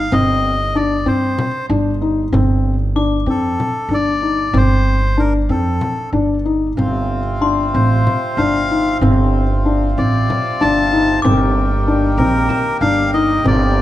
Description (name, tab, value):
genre	contemporary instrumental, chamber music in an uneven meter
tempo	189 BPM (eighths)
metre	7/8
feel	straight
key	G minor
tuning	A4 = 440 Hz
part	melodica	melody	0.0-13.8 s	A4 to A5	-20 LUFS	left 2 dB	none
part	upright bass	bass	0.0-13.8 s	G1 to G2	-18 LUFS	right 2 dB	none
part	glockenspiel with hard plastic mallets	texture	0.0-13.7 s	Bb5 to Eb6	-26 LUFS	left 5 dB	none
part	felt-muted upright piano	arpeggios	0.1-13.8 s	C4 to Eb4	-18 LUFS	left 3 dB	none
part	frame drum	percussion	0.1-13.8 s	none	-26 LUFS	left 1 dB	none
part	pedal harmonium	sustained chords	6.8-13.8 s	C3 to G4	-24 LUFS	equal	none
room	light reverb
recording	dark, warm production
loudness	-14 LUFS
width	side -14 dB against mid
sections	0.0-13.8 A section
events	none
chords	0.0 Cm/G; 2.3 G9sus4; 6.8 Dm7/G; 11.2 Ebmaj7/G